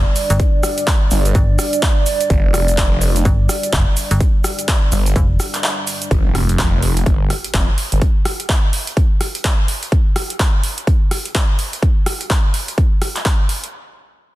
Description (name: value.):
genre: bass house.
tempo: 126 BPM.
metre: 4/4.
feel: swing 60% on 16ths.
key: unclear.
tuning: A4 = 440 Hz.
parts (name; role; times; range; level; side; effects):
dark analog pad; sustained chords; 0.0-6.1 s; G3 to D5; -23 LUFS; right 2 dB; lush chorus, sidechain pumping.
metallic FM bass; bass; 0.0-5.4 s; F1 to G1; -16 LUFS; equal; overdrive, sidechain pumping.
big-room dance drum kit; drums; 0.2-13.7 s; handclaps, hi-hat, rim click, shaker; -21 LUFS; equal; none.
electronic kick drum; drums; 0.4-13.4 s; none; -15 LUFS; equal; none.
phased detuned saw bass; bass; 1.1-8.0 s; F1 to G1; -16 LUFS; equal; phaser, overdrive, sidechain pumping.
impact; sound effects; 6.1-8.0 s; none; -28 LUFS; equal; none.
room: little or no reverb.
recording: dense, heavily limited modern master.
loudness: -14 LUFS.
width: side -16 dB against mid.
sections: 0.0-6.1 A section; 6.1-13.7 B section.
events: drop 0.0-6.1; break 5.6-6.1; impact 6.1-8.0.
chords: 0.0 G5; 6.1 Fsus2.